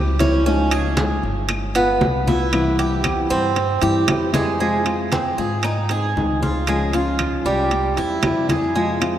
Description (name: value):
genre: latin, Cuban son and guajira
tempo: 116 BPM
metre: 4/4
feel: straight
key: unclear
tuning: A4 = 440 Hz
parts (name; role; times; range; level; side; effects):
- nylon-string guitar; accompaniment; 0.0-9.2 s; C3 to Ab4; -22 LUFS; left 2 dB; none
- Cuban tres; arpeggios; 0.0-9.2 s; G3 to Ab4; -22 LUFS; right 2 dB; none
- upright bass; bass; 0.0-9.2 s; G1 to Ab2; -24 LUFS; equal; none
- congas; percussion; 0.2-9.2 s; none; -28 LUFS; equal; none
- timbales; percussion; 0.2-9.2 s; none; -28 LUFS; right 4 dB; none
- claves; percussion; 0.7-9.2 s; none; -37 LUFS; left 4 dB; none
room: wet cathedral reverb, RT60 4.6 s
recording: in a vast, echoing space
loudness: -17 LUFS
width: side -11 dB against mid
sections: 0.0-4.6 A section; 4.6-9.2 B section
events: drum fill 4.3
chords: 0.5 Dbadd9; 1.5 G7; 2.5 C; 4.6 Fm; 5.6 Ab; 6.7 Db; 7.7 C